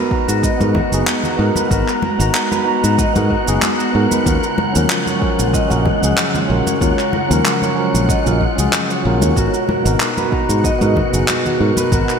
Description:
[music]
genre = sunset chillout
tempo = 94 BPM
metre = 4/4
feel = swing 53% on 16ths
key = G# dorian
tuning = A4 = 439 Hz
[part]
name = bright tine electric piano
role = accompaniment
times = 0.0-12.1 s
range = E#3 to A#5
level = -20 LUFS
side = equal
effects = auto-pan, digital delay
[part]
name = airy breathy pad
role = sustained chords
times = 0.0-12.2 s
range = B2 to A#5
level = -23 LUFS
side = right 2 dB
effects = chorus
[part]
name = concert harp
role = arpeggios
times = 0.0-12.2 s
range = E#4 to F#5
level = -23 LUFS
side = equal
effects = vintage 12-bit sampler grit, digital delay
[part]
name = wind-like tuned noise texture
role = texture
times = 0.1-12.2 s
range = F#5 to F#6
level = -27 LUFS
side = equal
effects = built-in reverb
[part]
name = electronic kick drum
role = drums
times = 0.1-12.1 s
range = none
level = -20 LUFS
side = equal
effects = overdrive
[part]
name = modern bright fingered electric bass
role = bass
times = 0.3-12.0 s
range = F#1 to G#2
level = -17 LUFS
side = equal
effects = none
[part]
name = electronic shaker and handclaps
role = drums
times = 0.3-12.2 s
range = none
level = -22 LUFS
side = right 1 dB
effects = overdrive, gated reverb
[part]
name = congas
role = percussion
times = 0.6-11.9 s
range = none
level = -25 LUFS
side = left 2 dB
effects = none
[sound]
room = wet lush hall reverb, RT60 2.6 s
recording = bright 1980s-style digital production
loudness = -14 LUFS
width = side -6 dB against mid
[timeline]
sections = 0.0-12.2 A section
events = none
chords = 0.0 G#m9; 4.3 D#m9; 9.4 G#m9

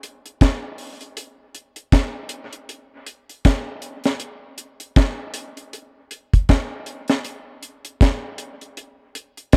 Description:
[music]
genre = reggae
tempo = 79 BPM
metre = 4/4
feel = swing 59% on 16ths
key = none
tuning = none
[part]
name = deep reggae drum kit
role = drums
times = 0.0-9.6 s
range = hi-hat, kick drum, snare drum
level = -20 LUFS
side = equal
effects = none
[sound]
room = light reverb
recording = none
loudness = -21 LUFS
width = mono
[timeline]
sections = 0.0-9.6 A section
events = none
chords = none

